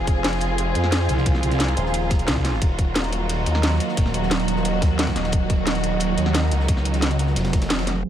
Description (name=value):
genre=dark technical drum and bass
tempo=177 BPM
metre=4/4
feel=straight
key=unclear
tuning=A4 = 440 Hz
part: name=dark symphonic string section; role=sustained chords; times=0.0-8.1 s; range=Eb3 to Ab4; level=-28 LUFS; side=left 1 dB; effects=sidechain pumping, low-pass filter
part: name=snarling distorted saw bass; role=bass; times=0.0-8.0 s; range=Eb1 to F2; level=-23 LUFS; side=equal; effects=overdrive, sidechain pumping
part: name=warbly tape-like pad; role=texture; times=0.0-8.1 s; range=Gb3 to Bb5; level=-27 LUFS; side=right 5 dB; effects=chorus, built-in reverb, sidechain pumping
part: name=crunchy breakbeat drum kit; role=drums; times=0.1-7.9 s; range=ride cymbal, snare drum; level=-36 LUFS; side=equal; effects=none
part: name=drum and bass drum kit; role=drums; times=0.1-8.1 s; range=hi-hat, snare drum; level=-25 LUFS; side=equal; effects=none
part: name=electronic kick drum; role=drums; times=0.1-7.6 s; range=none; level=-21 LUFS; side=equal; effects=none
part: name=growling FM bass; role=bass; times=1.1-2.6 s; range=C2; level=-22 LUFS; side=equal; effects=none
room=light reverb, studio reverb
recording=low-pass filter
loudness=-19 LUFS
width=side -10 dB against mid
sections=0.0-8.0 A section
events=drop 0.0-8.0; kick drops out 7.7-8.0; band accent 7.7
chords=0.0 Fm; 2.6 Ebm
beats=0.24 0.58 0.92 | 1.26 1.60 1.94 2.28 | 2.62 2.96 3.29 3.63 | 3.97 4.31 4.65 4.99 | 5.33 5.67 6.01 6.35 | 6.68 7.02 7.36 7.70 | 8.04